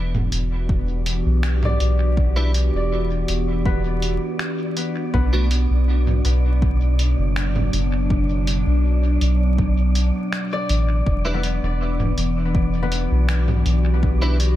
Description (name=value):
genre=ambient dub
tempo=81 BPM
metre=4/4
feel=straight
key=E minor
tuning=A4 = 440 Hz
part: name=warbly tape-like pad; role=sustained chords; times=0.0-14.6 s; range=B2 to G4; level=-26 LUFS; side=equal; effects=chorus, built-in reverb, phaser
part: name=concert harp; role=arpeggios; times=0.0-14.6 s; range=B3 to D5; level=-30 LUFS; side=left 3 dB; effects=tape echo
part: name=soft dub sub bass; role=bass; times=0.0-14.6 s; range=E1 to B1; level=-19 LUFS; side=equal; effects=none
part: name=wind-like tuned noise texture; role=texture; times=0.0-14.6 s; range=D4 to D5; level=-32 LUFS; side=left 2 dB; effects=built-in reverb
part: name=lo-fi sampler-style drum kit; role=drums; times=0.1-14.6 s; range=congas, finger snaps, hi-hat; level=-28 LUFS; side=right 1 dB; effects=dub echo
part: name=electronic kick drum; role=drums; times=0.7-14.2 s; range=none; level=-22 LUFS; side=equal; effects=overdrive
part: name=clean electric guitar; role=stabs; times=2.4-5.5, 11.2-14.4 s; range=A3 to B4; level=-32 LUFS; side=right 2 dB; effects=ensemble chorus, dub echo
room=light reverb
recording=vinyl crackle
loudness=-18 LUFS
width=side -14 dB against mid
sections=0.0-14.6 A section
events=none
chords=0.0 Em7; 5.1 Bm; 11.1 Em7